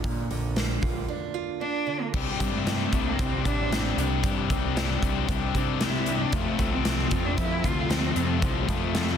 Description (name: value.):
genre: quiet-loud alternative rock.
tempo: 114 BPM.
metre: 4/4.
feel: straight.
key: unclear.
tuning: A4 = 440 Hz.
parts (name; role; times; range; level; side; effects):
picked steel-string acoustic guitar; arpeggios; 0.0-9.2 s; Bb2 to F4; -35 LUFS; right 11 dB; none.
growling picked electric bass; bass; 0.0-9.1 s; A1 to Bb2; -30 LUFS; equal; overdrive.
big rock drum kit; drums; 0.0-9.1 s; crash cymbal, hi-hat, kick drum, snare drum; -28 LUFS; equal; soft clipping on kick.
rich cello; melody; 1.6-9.2 s; F3 to F4; -31 LUFS; right 3 dB; none.
thick fuzz guitar; riff; 2.2-9.2 s; F2 to G4; -28 LUFS; left 12 dB; distortion.
room: small room ambience.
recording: dense, heavily limited modern master.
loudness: -24 LUFS.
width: side -8 dB against mid.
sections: 0.0-2.1 A section; 2.1-9.2 B section.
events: none.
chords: 0.0 Bb; 2.1 Csus2; 6.3 F.